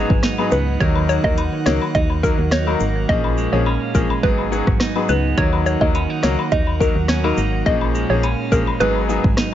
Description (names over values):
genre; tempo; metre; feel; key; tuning
dancehall; 105 BPM; 4/4; straight; Eb minor; A4 = 439 Hz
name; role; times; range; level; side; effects
hollow square pluck; melody; 0.0-9.2 s; Bb4 to Eb5; -23 LUFS; equal; chorus, ping-pong delay
bright concert grand piano; accompaniment; 0.0-9.2 s; F3 to Bb4; -24 LUFS; left 5 dB; none
airy breathy pad; sustained chords; 0.0-9.5 s; Db4 to Gb5; -29 LUFS; right 1 dB; chorus, sidechain pumping
clean electric guitar; arpeggios; 0.0-9.5 s; Ab2 to Eb4; -24 LUFS; right 5 dB; spring reverb
solid FM bass; bass; 0.0-9.4 s; Ab1 to Eb2; -22 LUFS; equal; none
afro-pop drum kit; drums; 0.1-9.5 s; hi-hat, kick drum, rim click, snare drum; -20 LUFS; equal; overdrive, vintage 12-bit sampler grit
woodblock and cabasa; percussion; 0.4-9.2 s; none; -30 LUFS; left 8 dB; none
room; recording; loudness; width
digital ambience; nothing above 7.6 kHz; -16 LUFS; side -11 dB against mid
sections
0.0-9.5 A section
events
hi-hats muted 3.1-5.4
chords
0.0 Abm7; 0.8 Ebm; 3.1 Bbm7; 4.2 Abm7; 5.4 Ebm; 7.7 Bbm7; 8.8 Abm7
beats
0.23 | 0.81 1.38 1.95 2.52 | 3.09 3.66 4.23 4.81 | 5.38 5.95 6.52 7.09 | 7.66 8.23 8.81 9.38